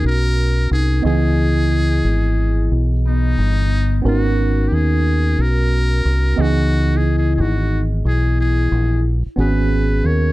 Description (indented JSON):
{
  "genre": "hip hop",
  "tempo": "90 BPM",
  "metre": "4/4",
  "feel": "swing 64% on 16ths",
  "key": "unclear",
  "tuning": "A4 = 442 Hz",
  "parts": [
    { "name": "trumpet with metal mute", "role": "melody", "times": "0.0-10.3 s", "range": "D#4 to C#5", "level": "-25 LUFS", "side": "equal", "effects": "none" },
    { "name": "vibraphone with soft mallets", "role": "second line", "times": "0.0-10.3 s", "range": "B3 to A#4", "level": "-24 LUFS", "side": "left 4 dB", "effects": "digital delay" },
    { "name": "tine electric piano", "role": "accompaniment", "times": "0.0-10.3 s", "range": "E3 to D#5", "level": "-23 LUFS", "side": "right 4 dB", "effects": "auto-pan" },
    { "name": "deep dub fingered electric bass", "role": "bass", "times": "0.0-10.3 s", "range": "G1 to D#2", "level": "-16 LUFS", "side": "equal", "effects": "none" }
  ],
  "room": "little or no reverb",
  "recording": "dark, warm production",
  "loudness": "-15 LUFS",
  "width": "side -18 dB against mid",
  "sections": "0.0-10.3 A section",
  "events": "none",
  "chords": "0.0 G#m11; 1.0 C#m9; 4.0 G#m11; 6.4 C#m9; 9.4 G#m11"
}